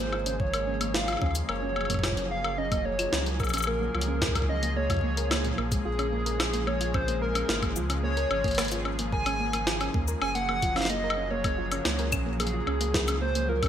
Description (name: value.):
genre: IDM.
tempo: 110 BPM.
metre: 4/4.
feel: straight.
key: unclear.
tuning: A4 = 440 Hz.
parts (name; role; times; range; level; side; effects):
warbly nostalgic lead; melody; 0.0-13.7 s; Ab4 to Ab5; -31 LUFS; equal; chorus, ping-pong delay.
warm analog pad; sustained chords; 0.0-13.7 s; Db3 to Ab4; -35 LUFS; left 1 dB; chorus.
soft round pluck; arpeggios; 0.0-13.7 s; Bb2 to Bb4; -35 LUFS; right 4 dB; chorus, cassette tape, digital delay.
warm sub bass; bass; 0.0-13.7 s; Gb1 to Eb2; -32 LUFS; equal; none.
jungle sampler-style drum kit; drums; 0.1-13.7 s; cabasa, hi-hat, snare drum, woodblock; -31 LUFS; left 2 dB; small room ambience, gated reverb, digital delay.
electronic kick drum; drums; 0.4-13.7 s; none; -30 LUFS; equal; small room ambience.
room: light reverb.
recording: bright 1980s-style digital production.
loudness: -25 LUFS.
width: side -9 dB against mid.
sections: 0.0-13.7 A section.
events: none.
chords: 0.0 Bbm7; 1.5 Gbmaj9; 5.9 Bbm7; 10.2 Gbmaj9.